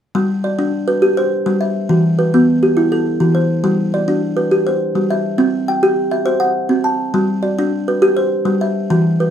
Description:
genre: southern african traditional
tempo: 137 BPM (dotted quarters)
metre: 12/8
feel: straight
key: G major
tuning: A4 = 440 Hz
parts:
  - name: kalimba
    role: arpeggios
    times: 0.1-9.3 s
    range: E3 to A5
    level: -14 LUFS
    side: equal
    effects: none
room: light reverb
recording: close, detailed microphones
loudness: -14 LUFS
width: side -9 dB against mid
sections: 0.1-9.3 A section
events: none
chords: 0.1 G; 1.9 Em; 3.6 G; 5.4 C; 7.1 G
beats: | 0.15 0.59 1.02 1.46 | 1.90 2.33 2.77 3.21 | 3.64 4.08 4.52 4.95 | 5.39 5.83 6.26 6.70 | 7.14 7.58 8.02 8.46 | 8.90

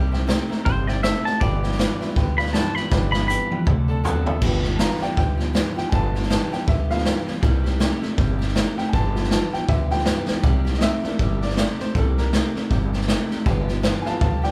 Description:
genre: rockabilly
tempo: 159 BPM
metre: 4/4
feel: swing 59% on 8ths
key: G mixolydian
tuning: A4 = 439 Hz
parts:
  - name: picked steel-string acoustic guitar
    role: accompaniment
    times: 0.0-14.5 s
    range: G2 to A4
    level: -34 LUFS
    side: equal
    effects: none
  - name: warm upright piano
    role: accompaniment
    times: 0.0-14.5 s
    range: E3 to Bb5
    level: -32 LUFS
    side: equal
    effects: none
  - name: electric guitar through a small old amp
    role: riff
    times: 0.0-14.5 s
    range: G2 to B3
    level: -31 LUFS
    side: equal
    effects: none
  - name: upright bass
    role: bass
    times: 0.0-14.5 s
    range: G1 to D2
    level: -27 LUFS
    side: equal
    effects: none
  - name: raw garage drum kit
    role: drums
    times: 0.1-14.5 s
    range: crash cymbal, hi-hat, kick drum, snare drum, toms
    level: -25 LUFS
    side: equal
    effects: none
  - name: twangy electric guitar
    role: melody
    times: 0.7-3.7 s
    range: C5 to B5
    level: -28 LUFS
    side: equal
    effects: none
room: light reverb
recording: band playing live in one room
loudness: -22 LUFS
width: mono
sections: 0.0-4.4 A section; 4.4-14.5 B section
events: drum fill 2.9-4.4, 10.3; upright piano solo 4.4-14.5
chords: 0.0 C7; 1.4 G7; 3.7 D7; 4.4 G7; 7.4 C7; 8.9 G7; 10.4 C7; 13.5 G7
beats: 0.29 0.66 1.04 | 1.42 1.79 2.17 2.54 | 2.92 3.29 3.67 4.04 | 4.42 4.80 5.17 5.55 | 5.92 6.30 6.68 7.05 | 7.43 7.81 8.18 8.56 | 8.94 9.31 9.69 10.07 | 10.44 10.82 11.20 11.57 | 11.95 12.33 12.71 13.08 | 13.46 13.84 14.22

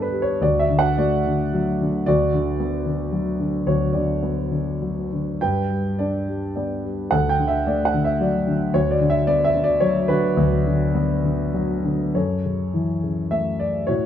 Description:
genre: classical, lyrical solo piano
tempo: 98-115 BPM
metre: 3/4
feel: rubato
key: B minor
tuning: A4 = 440 Hz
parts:
  - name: dark concert grand piano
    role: solo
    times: 0.0-14.1 s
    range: D2 to G5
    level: -19 LUFS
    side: equal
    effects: none
room: moderate small room reverb, RT60 0.6 s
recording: dark, warm production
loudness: -19 LUFS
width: side -10 dB against mid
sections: 0.0-12.1 A section; 12.1-14.1 B section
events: none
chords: 0.4 D; 2.1 Bm/D; 5.4 G; 7.1 D; 8.7 Bm/D; 12.1 F#m7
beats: | 0.41 0.98 1.54 | 2.08 2.60 3.13 | 3.67 4.23 4.81 | 5.41 6.00 6.56 | 7.12 7.67 8.21 | 8.74 9.27 9.81 | 10.37 10.95 11.54 | 12.15 12.74 13.32 | 13.89

